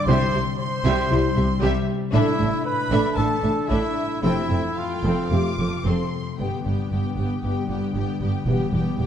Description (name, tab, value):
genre	cinematic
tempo	116 BPM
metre	4/4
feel	straight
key	G mixolydian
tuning	A4 = 440 Hz
part	warm symphonic violin section	second line	0.0-9.1 s	G4 to C6	-33 LUFS	left 3 dB	none
part	concert harp	arpeggios	0.0-9.1 s	E2 to G4	-28 LUFS	left 5 dB	none
part	mellow trumpet	stabs	0.0-5.8 s	E4 to C5	-27 LUFS	right 2 dB	none
part	warm symphonic violin section	melody	0.1-9.1 s	E5 to D6	-35 LUFS	left 4 dB	none
part	warm symphonic viola section	accompaniment	0.1-9.1 s	G3 to A4	-28 LUFS	equal	none
part	mellow French horn section	sustained chords	0.1-8.7 s	G3 to G4	-30 LUFS	left 3 dB	none
part	rich symphonic double bass section	bass	0.1-9.1 s	E1 to C2	-26 LUFS	right 2 dB	none
part	warm symphonic cello section	bass	0.1-9.1 s	E2 to C3	-27 LUFS	right 2 dB	none
room	moderate scoring stage reverb, RT60 1.8 s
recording	dark, warm production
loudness	-20 LUFS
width	side -9 dB against mid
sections	0.0-6.4 A section; 6.4-9.1 B section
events	none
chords	0.1 C; 2.1 Asus4; 4.2 Fadd9; 6.4 G; 8.5 Em